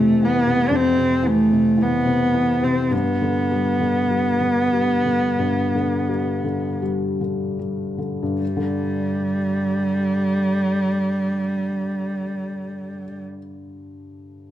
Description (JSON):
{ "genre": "celtic folk", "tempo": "37-60 BPM", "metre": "4/4", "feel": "rubato", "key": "G mixolydian", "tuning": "A4 = 435 Hz", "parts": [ { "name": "dark cello", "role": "melody", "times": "0.0-13.2 s", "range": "G3 to D4", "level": "-20 LUFS", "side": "right 1 dB", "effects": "none" }, { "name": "felt-muted upright piano", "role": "accompaniment", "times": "0.0-14.5 s", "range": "F2 to G3", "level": "-24 LUFS", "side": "left 3 dB", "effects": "none" } ], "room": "light reverb", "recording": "close, detailed microphones", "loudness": "-18 LUFS", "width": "side -12 dB against mid", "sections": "0.0-8.4 A section; 8.4-14.5 B section", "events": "slowing down 0.0-8.4", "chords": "0.0 Fmaj7; 2.9 G5" }